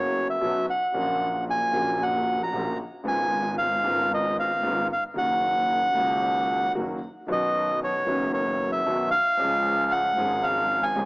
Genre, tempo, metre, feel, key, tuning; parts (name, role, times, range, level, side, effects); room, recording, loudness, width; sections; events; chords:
tango; 114 BPM; 4/4; rubato; B major; A4 = 438 Hz
bandoneon; melody; 0.0-11.1 s; C#5 to A#5; -23 LUFS; equal; cassette tape
warm concert grand piano; accompaniment; 0.0-11.1 s; F#1 to G#4; -30 LUFS; equal
clear double bass; bass; 0.0-11.1 s; F#1 to C#2; -33 LUFS; equal
light reverb, small room ambience; home recording on cassette, small speaker sound; -22 LUFS; side -27 dB against mid
0.0-11.1 A section
0.0 Bsus2; 0.9 F#/A#; 3.1 C#7/G#; 5.2 F#6; 7.3 Badd9; 9.4 C#